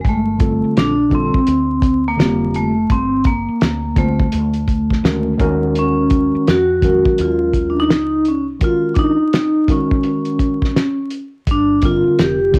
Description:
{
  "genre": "hip hop, jazz-hop",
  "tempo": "84 BPM",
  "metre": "4/4",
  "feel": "swing 64% on 16ths",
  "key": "unclear",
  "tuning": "A4 = 439 Hz",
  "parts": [
    { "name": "vibraphone with medium mallets", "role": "melody", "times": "0.0-12.6 s", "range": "Ab3 to G4", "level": "-18 LUFS", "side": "equal", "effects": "cassette tape, plate reverb" },
    { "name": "woody fretless electric bass", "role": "bass", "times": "0.0-12.6 s", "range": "F1 to F2", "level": "-27 LUFS", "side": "equal", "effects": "subtle chorus" },
    { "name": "cloth-damped thuddy drum kit", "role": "drums", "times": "0.0-12.6 s", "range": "hi-hat, kick drum, snare drum", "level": "-20 LUFS", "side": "equal", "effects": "cassette tape" },
    { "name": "tine electric piano", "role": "accompaniment", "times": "0.4-12.6 s", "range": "D3 to C5", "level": "-23 LUFS", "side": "equal", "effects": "overdrive, cassette tape, plate reverb" }
  ],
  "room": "moderate booth ambience, RT60 0.2 s",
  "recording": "home recording on cassette, vinyl crackle",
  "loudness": "-16 LUFS",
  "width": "mono",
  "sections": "0.0-12.6 A section",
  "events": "none",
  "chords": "0.0 Gm9; 5.4 Ebm7; 11.5 Gm7"
}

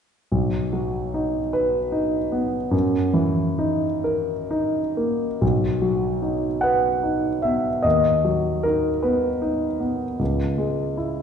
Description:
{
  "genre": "classical, romantic nocturne for solo piano",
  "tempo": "42-53 BPM (dotted quarters)",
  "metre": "6/8",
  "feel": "rubato",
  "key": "B major",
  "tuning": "A4 = 441 Hz",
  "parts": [
    { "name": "warm concert grand piano", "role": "solo", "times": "0.3-11.2 s", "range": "B1 to F#5", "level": "-20 LUFS", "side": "equal", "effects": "none" }
  ],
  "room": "wet recital hall reverb, RT60 1.5 s",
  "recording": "recorded in a church or concert hall, nothing above 10.9 kHz",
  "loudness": "-20 LUFS",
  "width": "side -7 dB against mid",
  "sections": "0.3-5.4 A section; 5.4-11.2 B section",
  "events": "none",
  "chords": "0.3 B; 2.7 F#6; 5.4 B; 7.8 B/D#; 10.2 C#m"
}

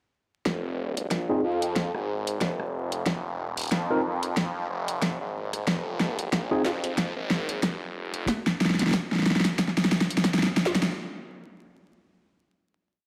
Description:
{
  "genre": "glitch hop",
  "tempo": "92 BPM",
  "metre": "4/4",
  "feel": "swing 57% on 16ths",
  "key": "F minor pentatonic",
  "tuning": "A4 = 441 Hz",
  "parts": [
    { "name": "phased detuned saw bass", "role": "bass", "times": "0.5-8.3 s", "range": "F1 to F2", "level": "-33 LUFS", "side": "equal", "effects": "phaser, high-pass filter" },
    { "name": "electronic kick drum", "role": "drums", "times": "0.5-10.4 s", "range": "none", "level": "-35 LUFS", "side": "equal", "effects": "high-pass filter on kick, high-pass filter on room" },
    { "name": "pop drum kit", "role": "drums", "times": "0.5-10.9 s", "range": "hi-hat, rim click, snare drum", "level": "-28 LUFS", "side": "equal", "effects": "none" },
    { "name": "tine electric piano", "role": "stabs", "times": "1.3-6.6 s", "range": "C4 to Bb4", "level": "-31 LUFS", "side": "equal", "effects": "overdrive, vintage 12-bit sampler grit, sidechain pumping, low-pass filter, analog delay" }
  ],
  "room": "moderate lush hall reverb, RT60 2.3 s",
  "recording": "dry, gritty hardware recording, transformer saturation, vinyl crackle",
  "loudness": "-27 LUFS",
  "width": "mono",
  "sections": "0.5-10.9 build",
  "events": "build-up 0.5-10.9; drum fill 0.5-10.9; filter sweep on tine electric piano 0.5-8.3",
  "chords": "0.5 Fm"
}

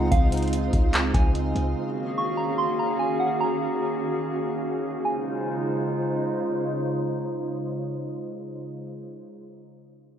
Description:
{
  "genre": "hip hop, atmospheric cloud-rap",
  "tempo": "146 BPM",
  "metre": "4/4",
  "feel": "half-time",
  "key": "Db major",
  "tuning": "A4 = 438 Hz",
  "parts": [
    { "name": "soft synth bell", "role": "melody", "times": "0.0-6.2 s", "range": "F5 to Db6", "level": "-30 LUFS", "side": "right 2 dB", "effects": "chorus, digital delay" },
    { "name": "warbly tape-like pad", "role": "sustained chords", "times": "0.0-9.1 s", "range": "Db3 to F5", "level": "-27 LUFS", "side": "right 1 dB", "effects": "chorus, built-in reverb, sidechain pumping" },
    { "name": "warm 808-style bass", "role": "bass", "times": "0.0-1.8 s", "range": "Db2", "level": "-26 LUFS", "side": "equal", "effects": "none" },
    { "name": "twinkling granular texture", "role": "texture", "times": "0.0-9.1 s", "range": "Eb3 to F5", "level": "-36 LUFS", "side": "equal", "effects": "built-in reverb" },
    { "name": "booming analog drum machine", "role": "drums", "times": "0.1-1.7 s", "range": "handclaps, hi-hat, kick drum", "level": "-22 LUFS", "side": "equal", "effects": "none" }
  ],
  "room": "digital ambience",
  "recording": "rough home demo mix, low-pass filter",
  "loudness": "-23 LUFS",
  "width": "side -9 dB against mid",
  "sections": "0.0-5.0 A section; 5.0-8.3 B section",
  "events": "filter sweep 0.0-5.0",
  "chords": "0.0 Dbmaj9; 1.8 Ebm11; 5.0 Dbmaj9"
}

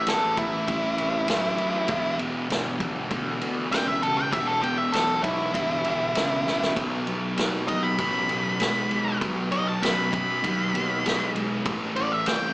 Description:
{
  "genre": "blues rock power trio and southern rock",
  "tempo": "98 BPM",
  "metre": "4/4",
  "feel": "straight",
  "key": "E minor",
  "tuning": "A4 = 442 Hz",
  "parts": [
    { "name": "octave-fuzz lead guitar", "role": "melody", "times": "0.0-12.5 s", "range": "E4 to B5", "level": "-26 LUFS", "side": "equal", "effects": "distortion" },
    { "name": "thick fuzz guitar", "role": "riff", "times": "0.0-12.5 s", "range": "E2 to G#3", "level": "-29 LUFS", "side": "equal", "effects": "distortion, slapback echo" },
    { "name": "fuzz picked electric bass", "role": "bass", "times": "0.1-12.5 s", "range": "E1 to F#2", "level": "-32 LUFS", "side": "equal", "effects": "overdrive" },
    { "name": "vintage drum kit", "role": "drums", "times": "0.1-12.4 s", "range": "kick drum, ride cymbal, snare drum", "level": "-29 LUFS", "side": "equal", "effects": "none" }
  ],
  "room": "light reverb, small room reverb",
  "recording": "live gig heard through the venue's PA, club reverb, small speaker sound",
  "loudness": "-22 LUFS",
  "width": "side -22 dB against mid",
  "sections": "0.0-12.5 A section",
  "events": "drum fill 6.5-6.8",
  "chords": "0.0 Am; 1.9 Em; 6.8 B; 11.7 Am7"
}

